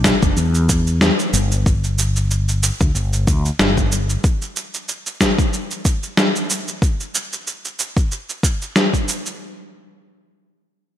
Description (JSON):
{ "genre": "organic downtempo", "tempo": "93 BPM", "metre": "4/4", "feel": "swing 55% on 16ths", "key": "unclear", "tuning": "A4 = 440 Hz", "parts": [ { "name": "mellow fretless electric bass", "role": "bass", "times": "0.0-4.2 s", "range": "F#1 to E2", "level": "-18 LUFS", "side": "equal", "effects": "none" }, { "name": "electronic kick drum", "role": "drums", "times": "0.0-9.0 s", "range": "none", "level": "-18 LUFS", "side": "equal", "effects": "none" }, { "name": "electronic snare drum and cabasa", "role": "drums", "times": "0.0-9.4 s", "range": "none", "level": "-19 LUFS", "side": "equal", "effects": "none" } ], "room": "light reverb, digital ambience", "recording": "none", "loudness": "-16 LUFS", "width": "side -11 dB against mid", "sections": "0.0-9.4 A section", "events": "none", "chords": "none", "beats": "0.36 1.01 | 1.66 2.30 2.95 3.59 | 4.24 4.88 5.53 6.17 | 6.82 7.46 8.11 8.75" }